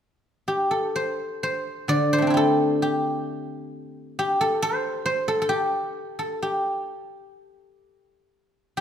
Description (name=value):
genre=chinese traditional, Chinese solo plucked strings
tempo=65 BPM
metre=2/4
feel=rubato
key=C gong mode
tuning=A4 = 441 Hz
part: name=guzheng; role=solo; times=0.5-8.8 s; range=D3 to D5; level=-22 LUFS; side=equal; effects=none
room=moderate scoring stage reverb, RT60 1.8 s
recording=minimal, uncompressed stereo recording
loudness=-22 LUFS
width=side -8 dB against mid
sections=0.0-8.8 A section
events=none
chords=none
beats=0.95 | 1.90 2.81 | 3.71 4.61 | 5.52 6.44 | 7.37 8.30